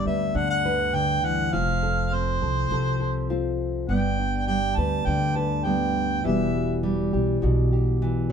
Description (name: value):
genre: folk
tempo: 102 BPM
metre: 4/4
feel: straight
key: G major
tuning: A4 = 439 Hz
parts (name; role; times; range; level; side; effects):
- warm harmonica; melody; 0.0-6.8 s; C5 to A5; -26 LUFS; right 2 dB; none
- nylon-string guitar; accompaniment; 0.0-8.3 s; G2 to B4; -25 LUFS; left 1 dB; none
- upright bass; bass; 0.1-8.3 s; E1 to D2; -26 LUFS; equal; none
room: moderate studio reverb, RT60 0.9 s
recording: band playing live in one room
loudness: -22 LUFS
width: side -7 dB against mid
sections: 0.0-8.3 A section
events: none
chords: 0.0 G; 1.5 F; 3.9 G; 6.3 Emadd9